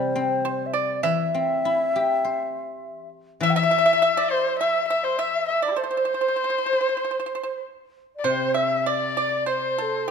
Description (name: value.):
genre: chinese traditional, Chinese chamber ensemble.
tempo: 100 BPM.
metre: 4/4.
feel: rubato.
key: C gong mode.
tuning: A4 = 441 Hz.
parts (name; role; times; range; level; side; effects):
reedy low xiao; melody; 0.0-10.1 s; A4 to G5; -25 LUFS; equal; none.
pipa; second line; 0.0-10.1 s; G4 to E5; -27 LUFS; right 7 dB; none.
guzheng; accompaniment; 0.0-10.1 s; C3 to C5; -28 LUFS; left 6 dB; none.
warm erhu; second line; 3.4-10.1 s; D4 to E5; -24 LUFS; left 6 dB; none.
room: moderate recital hall reverb, RT60 1.5 s.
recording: none.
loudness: -20 LUFS.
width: side -6 dB against mid.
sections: 0.0-8.3 A section; 8.3-10.1 B section.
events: none.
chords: none.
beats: 0.45 | 1.04 1.64 2.24 2.84 | 3.42 4.01 4.60 5.19 | 5.78 6.38 6.99 7.62 | 8.25 8.87 9.48 10.08.